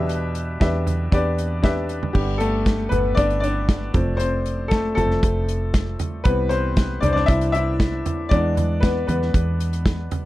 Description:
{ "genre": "piano-driven pop", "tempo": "117 BPM", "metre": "4/4", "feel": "straight", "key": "unclear", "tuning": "A4 = 442 Hz", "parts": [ { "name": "bright upright piano", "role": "accompaniment", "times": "0.0-10.3 s", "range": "B2 to E5", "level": "-23 LUFS", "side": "left 2 dB", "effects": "none" }, { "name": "fingered electric bass", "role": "bass", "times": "0.0-10.1 s", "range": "F1 to E2", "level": "-23 LUFS", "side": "equal", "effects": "none" }, { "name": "modern studio drum kit", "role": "drums", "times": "0.1-10.2 s", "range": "crash cymbal, hi-hat, kick drum, snare drum, toms", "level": "-22 LUFS", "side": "right 1 dB", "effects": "none" } ], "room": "little or no reverb", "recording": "dry, close 1970s-style studio recording", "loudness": "-18 LUFS", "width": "side -16 dB against mid", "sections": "0.0-2.2 A section; 2.2-10.3 B section", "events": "upright piano solo 2.2-10.3", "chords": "0.0 Em7; 2.2 G; 3.9 F; 6.3 C; 8.3 E" }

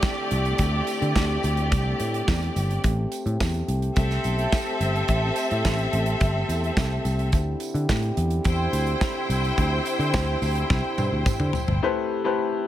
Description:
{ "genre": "disco", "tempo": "107 BPM", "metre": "4/4", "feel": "straight", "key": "unclear", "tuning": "A4 = 440 Hz", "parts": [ { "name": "bright studio string section", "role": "second line", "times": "0.0-11.8 s", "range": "A3 to G5", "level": "-28 LUFS", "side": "equal", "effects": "none" }, { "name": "mellow French horn section", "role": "sustained chords", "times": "0.0-12.7 s", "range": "D3 to G4", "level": "-30 LUFS", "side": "equal", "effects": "stereo widening, low-pass filter" }, { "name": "modern studio drum kit", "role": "drums", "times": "0.0-11.8 s", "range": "hi-hat, kick drum, snare drum, toms", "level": "-26 LUFS", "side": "equal", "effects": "none" }, { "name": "tambourine", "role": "percussion", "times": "0.0-11.7 s", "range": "none", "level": "-43 LUFS", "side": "right 9 dB", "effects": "none" }, { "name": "picked electric bass", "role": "bass", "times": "0.3-11.8 s", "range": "G1 to D3", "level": "-24 LUFS", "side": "equal", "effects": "none" }, { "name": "clear concert grand piano", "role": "accompaniment", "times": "11.8-12.7 s", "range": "A3 to C5", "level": "-23 LUFS", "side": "left 6 dB", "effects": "none" } ], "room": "light reverb, small room ambience", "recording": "none", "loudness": "-21 LUFS", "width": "side -12 dB against mid", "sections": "0.0-11.8 A section", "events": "filter sweep on French horn section 0.0-11.8; drum fill 10.7-11.8", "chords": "0.0 D9sus4; 2.8 Am7; 7.3 D9sus4; 11.8 Am7" }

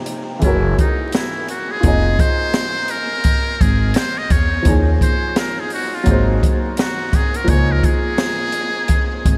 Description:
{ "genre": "hip hop, jazz-hop", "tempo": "85 BPM", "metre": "4/4", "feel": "swing 62% on 16ths", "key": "Db major", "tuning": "A4 = 442 Hz", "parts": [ { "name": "warm upright piano", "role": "accompaniment", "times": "0.0-9.4 s", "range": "C3 to Eb5", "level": "-25 LUFS", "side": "equal", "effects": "lush chorus" }, { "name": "open jazz drum kit", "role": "drums", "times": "0.1-9.4 s", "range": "hi-hat, kick drum, snare drum", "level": "-20 LUFS", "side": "equal", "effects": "none" }, { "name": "trumpet with metal mute", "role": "melody", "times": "0.4-9.4 s", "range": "Eb4 to Eb5", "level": "-24 LUFS", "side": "equal", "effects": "none" }, { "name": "upright bass", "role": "bass", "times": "0.4-9.4 s", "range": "F1 to Fb2", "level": "-20 LUFS", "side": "equal", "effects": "none" } ], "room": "moderate huge ambient reverb, RT60 7.1 s", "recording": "dreamy mix soaked in reverb, vinyl crackle", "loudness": "-17 LUFS", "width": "mono", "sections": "0.0-9.4 A section", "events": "muted trumpet solo 0.0-9.4", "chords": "0.4 Gb9; 1.8 Fm7; 4.7 Eb5; 6.1 Ab9; 7.5 Dbmaj7" }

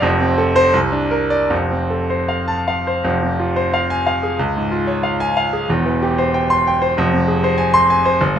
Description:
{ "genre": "classical, romantic character piece for solo piano", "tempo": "76-98 BPM", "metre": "2/4", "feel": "rubato", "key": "F major, F minor from 3.0 s", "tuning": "A4 = 440 Hz", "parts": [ { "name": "bright concert grand piano", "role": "solo", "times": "0.0-8.4 s", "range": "E1 to C6", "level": "-15 LUFS", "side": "equal", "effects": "none" } ], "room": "moderate large studio reverb, RT60 0.9 s", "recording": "minimal, uncompressed stereo recording", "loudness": "-15 LUFS", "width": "side -9 dB against mid", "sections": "0.0-3.0 A section; 3.0-8.4 B section", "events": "none", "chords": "0.0 F; 0.7 Csus2; 1.5 F; 3.0 Fm; 4.4 Db; 5.7 C/E; 7.0 Fm" }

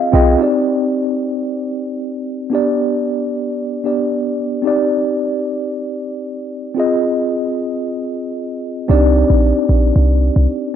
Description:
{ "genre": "afrobeats", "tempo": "113 BPM", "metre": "4/4", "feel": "straight", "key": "C harmonic minor", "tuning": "A4 = 439 Hz", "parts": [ { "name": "mellow tine electric piano", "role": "accompaniment", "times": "0.0-10.8 s", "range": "B3 to G5", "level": "-16 LUFS", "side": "equal", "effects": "medium stereo tremolo" }, { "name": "warm 808-style bass", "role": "bass", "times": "0.1-0.4, 8.9-10.5 s", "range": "Bb1 to C2", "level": "-12 LUFS", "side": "equal", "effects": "none" } ], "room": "digital ambience", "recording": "dry, gritty hardware recording", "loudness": "-15 LUFS", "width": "side -9 dB against mid", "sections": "0.4-8.9 A section; 8.9-10.8 B section", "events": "tine electric piano fill 0.0-0.4", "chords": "0.4 Cmadd9; 2.5 G; 4.6 Cmadd9; 6.8 Fm7; 8.9 Cmadd9" }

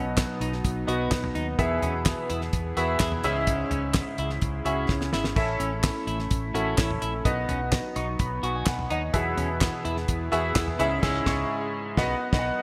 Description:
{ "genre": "piano-driven pop", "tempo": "127 BPM", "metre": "4/4", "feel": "straight", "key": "E major", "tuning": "A4 = 440 Hz", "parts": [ { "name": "clear concert grand piano", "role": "accompaniment", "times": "0.0-12.6 s", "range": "G#2 to C#6", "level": "-30 LUFS", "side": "equal", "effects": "analog chorus" }, { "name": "airy breathy pad", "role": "sustained chords", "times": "0.1-12.6 s", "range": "C#3 to B4", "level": "-40 LUFS", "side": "equal", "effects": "none" }, { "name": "clean electric guitar", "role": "riff", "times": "0.0-10.9 s", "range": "C#4 to F#4", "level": "-37 LUFS", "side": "equal", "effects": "none" }, { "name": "vintage muted fingered electric bass", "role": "bass", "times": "0.0-12.5 s", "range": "G#1 to E2", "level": "-34 LUFS", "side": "equal", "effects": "none" }, { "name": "damped 70s drum kit", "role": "drums", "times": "0.2-12.5 s", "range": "crash cymbal, handclaps, hi-hat, kick drum, snare drum, splash cymbal, toms", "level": "-29 LUFS", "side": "equal", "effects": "none" } ], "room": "moderate plate reverb, RT60 1.9 s, small room reverb", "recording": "bright 1980s-style digital production", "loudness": "-26 LUFS", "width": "mono", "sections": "0.0-12.6 A section", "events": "drum fill 4.9-5.4; grand piano fill 7.7-9.1; band accent 11.0-12.6", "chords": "0.0 B; 1.6 E; 3.2 C#m; 5.4 A; 7.3 B; 9.1 E; 10.8 C#m; 12.0 B" }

